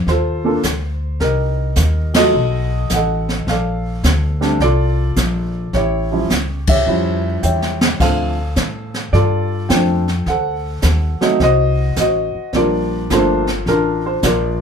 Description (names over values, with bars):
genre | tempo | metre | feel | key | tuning
jazz piano trio | 106 BPM | 4/4 | swing 67% on 8ths | G minor | A4 = 440 Hz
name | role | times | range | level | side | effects
warm grand piano | melody | 0.0-14.6 s | F3 to G5 | -18 LUFS | equal | none
upright bass | bass | 0.0-14.6 s | G1 to A2 | -18 LUFS | equal | none
jazz brush drum kit | drums | 0.1-14.6 s | brushed snare drum, crash cymbal, hi-hat, kick drum, ride cymbal, snare drum | -20 LUFS | equal | none
room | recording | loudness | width
moderate studio reverb, RT60 0.6 s | band playing live in one room | -14 LUFS | side -7 dB against mid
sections
0.0-14.6 A section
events
band accent 2.1, 6.6; drum fill 7.4-8.0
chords
0.0 G7sus2 (rootless); 1.2 Cm7; 2.3 B7; 3.5 Bbmaj9; 5.7 A7b13; 8.0 Dm7; 10.3 D7b9; 12.5 Gm9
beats
0.08 0.65 | 1.21 1.78 2.34 2.91 | 3.48 4.04 4.61 5.17 | 5.74 6.31 6.87 7.44 | 8.01 8.57 9.14 9.71 | 10.28 10.84 11.41 11.98 | 12.54 13.11 13.68 14.25